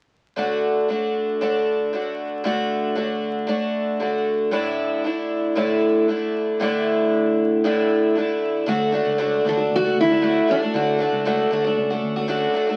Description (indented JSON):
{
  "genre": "pop",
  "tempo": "116 BPM",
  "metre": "4/4",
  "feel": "straight",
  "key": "D major",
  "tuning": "A4 = 440 Hz",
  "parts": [
    { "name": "picked twelve-string acoustic guitar", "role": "accompaniment", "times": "0.4-12.8 s", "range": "A2 to F#4", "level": "-22 LUFS", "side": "equal", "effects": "none" },
    { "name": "vintage muted fingered electric bass", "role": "bass", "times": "8.7-12.5 s", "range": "C#2 to D2", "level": "-34 LUFS", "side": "equal", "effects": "none" },
    { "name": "picked steel-string acoustic guitar", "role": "melody", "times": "9.5-12.5 s", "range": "D4 to F#4", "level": "-24 LUFS", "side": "equal", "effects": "none" }
  ],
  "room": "moderate club reverb, RT60 0.5 s",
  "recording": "very old 78 rpm record, vinyl crackle",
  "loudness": "-21 LUFS",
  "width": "mono",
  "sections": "0.4-8.7 A section; 8.7-12.8 B section",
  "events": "none",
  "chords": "0.4 D; 4.5 Asus4; 8.7 D",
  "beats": "| 0.38 0.89 1.41 1.93 | 2.45 2.97 3.48 4.00 | 4.52 5.04 5.56 6.08 | 6.59 7.11 7.63 8.15 | 8.67 9.19 9.70 10.22 | 10.74 11.26 11.78 12.29"
}